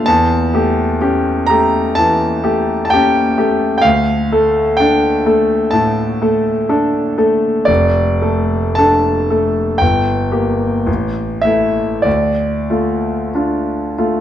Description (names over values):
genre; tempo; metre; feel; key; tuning
classical, romantic nocturne for solo piano; 47-67 BPM; 4/4; rubato; D minor; A4 = 440 Hz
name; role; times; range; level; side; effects
clear concert grand piano; solo; 0.0-14.2 s; F1 to Bb5; -12 LUFS; equal; none
room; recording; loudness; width
moderate recital hall reverb, RT60 1.7 s; close, detailed microphones; -12 LUFS; side -10 dB against mid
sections
0.0-14.2 A section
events
none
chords
0.1 A7/E; 3.8 Dm; 7.7 Dm/F; 9.8 Gm; 10.9 A5; 12.1 Dm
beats
| 0.07 1.01 1.97 2.91 | 3.84 4.79 5.74 6.70 | 7.69 8.80 9.81 10.88 | 12.06 13.34